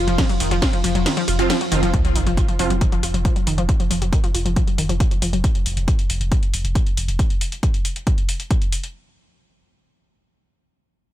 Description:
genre	driving peak-time techno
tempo	137 BPM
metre	4/4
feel	straight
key	unclear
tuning	A4 = 440 Hz
part	analog pluck	riff	0.0-5.4 s	Eb3 to F4	-24 LUFS	left 1 dB	chorus, sidechain pumping, digital delay
part	saturated sub bass	bass	0.0-7.2 s	F1	-23 LUFS	equal	tube saturation, sidechain pumping, low-pass filter
part	deep dark ambient pad	drone	0.0-2.0 s	F3 to F4	-29 LUFS	left 1 dB	chorus, built-in reverb, sidechain pumping
part	techno drum kit	drums	0.1-8.9 s	hi-hat, ride cymbal, snare drum	-26 LUFS	equal	sidechain pumping on hats, sidechain pumping on cymbals
part	electronic kick drum	drums	0.2-8.6 s	none	-20 LUFS	equal	none
part	rave stab	stabs	1.4-2.7 s	F3 to F4	-26 LUFS	right 4 dB	chorus, built-in reverb, sidechain pumping, ping-pong delay
part	sub drop	sound effects	1.9-3.7 s	none	-27 LUFS	equal	none
room	little or no reverb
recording	none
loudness	-17 LUFS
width	side -13 dB against mid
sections	0.0-1.9 A section; 1.9-8.9 B section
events	drop 0.0-1.9; kick drops out 1.1-1.9; impact 1.9-3.7; filter sweep on synth arpeggio sound 1.9-5.4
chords	0.0 F5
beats	| 0.18 0.62 1.06 1.50 | 1.94 2.37 2.81 3.25 | 3.69 4.13 4.56 5.00 | 5.44 5.88 6.32 6.75 | 7.19 7.63 8.07 8.51

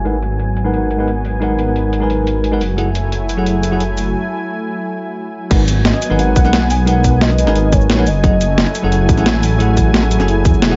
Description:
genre	liquid drum and bass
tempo	176 BPM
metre	4/4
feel	straight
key	G# phrygian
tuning	A4 = 440 Hz
part	bell-like tine electric piano	accompaniment	0.0-10.8 s	F#3 to G#5	-21 LUFS	equal	digital delay
part	lush unison pad	sustained chords	0.0-10.8 s	F#3 to G#5	-25 LUFS	equal	chorus, sidechain pumping
part	dark detuned saw bass	bass	0.0-10.8 s	E1 to F#2	-18 LUFS	equal	none
part	breakbeat sampler-style drum kit	drums	0.1-10.7 s	cabasa, crash cymbal, hi-hat, snare drum	-21 LUFS	equal	low-pass filter on hats, low-pass filter on perc, low-pass filter on cymbals, low-pass filter on snare
part	electronic kick drum	drums	5.5-10.5 s	none	-16 LUFS	equal	none
part	warm velvety synth lead	melody	5.8-9.4 s	C#5 to G#5	-24 LUFS	equal	chorus, dub echo
room	light reverb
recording	low-pass filter, nothing above 7.6 kHz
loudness	-15 LUFS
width	mono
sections	0.0-5.5 A section; 5.5-10.8 B section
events	filter sweep on drum 0.0-5.5; filter sweep 0.0-5.5; break 4.1-5.5; drop 5.5-10.8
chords	0.1 G#m9; 2.6 F#m9; 5.5 G#m9; 8.1 F#m9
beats	| 0.05 0.40 0.74 1.08 | 1.42 1.76 2.10 2.44 | 2.78 3.12 3.46 3.80 | 4.14 4.49 4.83 5.17 | 5.51 5.85 6.19 6.53 | 6.87 7.21 7.55 7.89 | 8.24 8.58 8.92 9.26 | 9.60 9.94 10.28 10.62

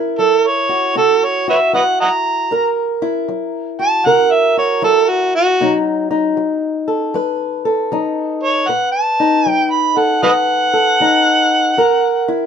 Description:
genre	acoustic country blues, solo or duo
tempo	78 BPM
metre	4/4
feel	swing 65% on 8ths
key	F# mixolydian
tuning	A4 = 440 Hz
part	fingerpicked old ladder-braced acoustic guitar	accompaniment	0.0-12.5 s	F#2 to B4	-17 LUFS	left 1 dB	none
part	overdriven harmonica	melody	0.2-12.5 s	F#4 to B5	-13 LUFS	right 2 dB	none
room	light reverb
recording	minimal, uncompressed stereo recording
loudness	-13 LUFS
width	side -7 dB against mid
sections	0.0-12.5 A section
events	none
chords	0.0 F#7; 5.6 B7; 11.8 F#7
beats	0.19 0.96 1.74 | 2.51 3.29 4.06 4.83 | 5.60 6.37 7.14 7.91 | 8.69 9.46 10.23 11.00 | 11.77

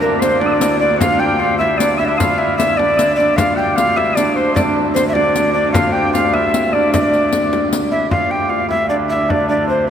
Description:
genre	medieval dance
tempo	101 BPM (dotted quarters)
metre	6/8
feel	straight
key	D minor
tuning	A4 = 440 Hz
part	breathy mellow tenor recorder	melody	0.0-9.9 s	Bb4 to G5	-17 LUFS	equal	none
part	clear shawm	second line	0.0-7.7 s	F5 to E6	-23 LUFS	left 3 dB	none
part	hammered dulcimer	second line	0.0-9.9 s	Bb3 to G4	-19 LUFS	right 2 dB	tape echo
part	clear viola da gamba	drone	0.0-9.9 s	D2	-23 LUFS	left 1 dB	none
part	frame drum	percussion	0.0-9.8 s	none	-25 LUFS	left 2 dB	none
part	riq	percussion	0.2-7.9 s	none	-24 LUFS	left 4 dB	none
room	wet cathedral reverb, RT60 6.1 s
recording	none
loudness	-13 LUFS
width	side -8 dB against mid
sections	0.0-8.1 A section; 8.1-9.9 B section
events	none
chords	none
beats	0.41 | 1.01 1.60 | 2.19 2.79 | 3.38 3.97 | 4.57 5.16 | 5.75 6.34 | 6.93 7.52 | 8.11 8.70 | 9.29 9.88

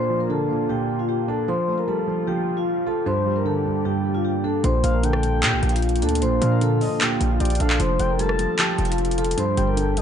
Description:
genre	hip hop, trap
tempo	152 BPM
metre	4/4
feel	half-time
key	Bb major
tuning	A4 = 439 Hz
part	vibraphone with soft mallets	melody	0.0-10.0 s	F4 to C6	-25 LUFS	left 4 dB	tape echo
part	dark concert grand piano	accompaniment	0.0-10.0 s	G2 to F4	-25 LUFS	right 4 dB	none
part	deep dark ambient pad	sustained chords	0.0-10.0 s	Bb3 to G4	-30 LUFS	right 2 dB	chorus, built-in reverb
part	hard-hitting 808-style bass	bass	4.6-10.0 s	F1 to Bb2	-22 LUFS	equal	none
part	trap drum kit	drums	4.6-10.0 s	handclaps, hi-hat, rim click	-25 LUFS	equal	none
part	gliding portamento lead	second line	4.8-10.0 s	D5 to A5	-32 LUFS	left 3 dB	chorus, tape echo
room	light reverb, digital ambience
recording	dark, warm production, nothing above 10.6 kHz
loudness	-19 LUFS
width	side -8 dB against mid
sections	0.0-10.0 A section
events	none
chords	0.0 Bb; 1.5 Fadd9; 3.1 Gm; 4.6 Bb; 7.8 Fadd9; 9.4 Gm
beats	0.30 0.69 1.09 | 1.48 1.88 2.27 2.67 | 3.06 3.46 3.85 4.25 | 4.64 5.04 5.43 5.82 | 6.22 6.61 7.01 7.40 | 7.80 8.19 8.59 8.98 | 9.38 9.77

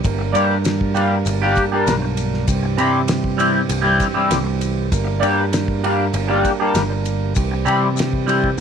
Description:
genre	psychedelic rock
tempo	98 BPM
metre	4/4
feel	straight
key	G dorian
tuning	A4 = 440 Hz
part	combo organ	sustained chords	0.0-8.6 s	E3 to Bb4	-26 LUFS	right 10 dB	none
part	picked electric bass	bass	0.0-8.6 s	G1 to C3	-21 LUFS	equal	none
part	analog drone	drone	0.0-8.6 s	G2	-30 LUFS	equal	none
part	damped 70s drum kit	drums	0.0-8.6 s	kick drum, ride cymbal, snare drum	-25 LUFS	equal	none
part	maracas	percussion	0.0-8.6 s	none	-34 LUFS	left 17 dB	none
part	twangy electric guitar	riff	0.2-8.6 s	G3 to G4	-18 LUFS	left 1 dB	flanger, double-tracked left and right
room	light reverb, small room ambience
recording	1960s-style stereo with parts hard left and right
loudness	-16 LUFS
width	side -7 dB against mid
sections	0.0-8.6 A section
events	none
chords	0.0 Gm; 2.5 C; 4.9 Gm; 7.4 C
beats	| 0.04 0.65 1.26 1.87 | 2.48 3.10 3.71 4.32 | 4.93 5.54 6.15 6.76 | 7.37 7.98 8.59

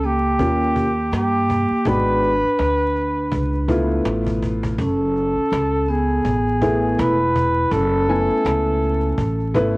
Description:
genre	hip hop, jazz-hop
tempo	82 BPM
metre	4/4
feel	swing 59% on 16ths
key	F# minor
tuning	A4 = 440 Hz
part	breathy flugelhorn	melody	0.0-9.8 s	G4 to B4	-21 LUFS	equal	cassette tape, tape echo
part	vibraphone with medium hard mallets	second line	0.0-9.8 s	A#3 to E4	-24 LUFS	right 1 dB	cassette tape
part	upright bass	bass	0.0-9.8 s	E1 to G2	-23 LUFS	equal	none
part	cajon	drums	0.0-9.7 s	none	-29 LUFS	equal	vintage 12-bit sampler grit, cassette tape
part	dark upright piano	accompaniment	0.4-9.8 s	G#3 to G#5	-21 LUFS	left 1 dB	cassette tape
room	light reverb, studio reverb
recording	home recording on cassette, vinyl crackle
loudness	-17 LUFS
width	side -22 dB against mid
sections	0.0-9.8 A section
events	none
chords	0.4 D#7; 1.9 G#m7b5; 3.3 C#7alt; 4.8 F#m11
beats	0.40 1.13 | 1.86 2.59 3.32 4.05 | 4.79 5.52 6.25 6.98 | 7.71 8.45 9.18

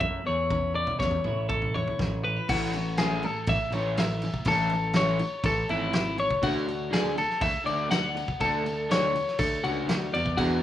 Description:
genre	math rock and midwest emo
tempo	122 BPM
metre	4/4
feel	straight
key	A major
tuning	A4 = 443 Hz
part	twelve-string electric guitar	accompaniment	0.0-4.5 s	E2 to G#4	-36 LUFS	right 7 dB	none
part	twelve-string electric guitar	arpeggios	0.0-10.6 s	E4 to F#5	-27 LUFS	left 2 dB	spring reverb
part	overdriven picked electric bass	bass	0.0-10.6 s	G#1 to F#2	-31 LUFS	left 1 dB	none
part	loose indie drum kit	drums	0.0-10.5 s	crash cymbal, kick drum, snare drum, toms	-31 LUFS	equal	none
part	crunchy overdriven guitar	riff	2.5-10.6 s	D3 to G#4	-32 LUFS	right 2 dB	none
room	moderate studio reverb, RT60 0.6 s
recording	rough home demo mix, small room ambience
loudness	-24 LUFS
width	side -12 dB against mid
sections	0.0-2.5 A section; 2.5-10.6 B section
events	none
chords	0.3 Amaj7/E; 1.3 Amaj7; 6.4 Dmaj7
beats	0.01 | 0.51 1.01 1.50 2.00 | 2.49 2.98 3.48 3.97 | 4.46 4.95 5.45 5.94 | 6.43 6.92 7.42 7.91 | 8.40 8.90 9.39 9.88 | 10.38

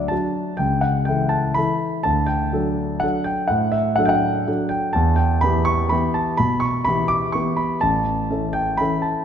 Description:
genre	classical, piano waltz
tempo	124 BPM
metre	3/4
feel	rubato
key	unclear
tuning	A4 = 437 Hz
part	warm concert grand piano	solo	0.0-9.2 s	A1 to D6	-18 LUFS	equal	none
room	moderate scoring stage reverb, RT60 1.9 s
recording	minimal, uncompressed stereo recording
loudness	-18 LUFS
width	side -8 dB against mid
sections	0.0-9.2 A section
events	none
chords	0.0 D; 0.6 A/C#; 2.1 D; 5.0 Em; 7.8 A7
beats	0.11 | 0.60 1.08 1.57 | 2.06 2.54 3.03 | 3.51 3.99 4.48 | 4.96 5.44 5.93 | 6.40 6.87 7.35 | 7.83 8.31 8.80

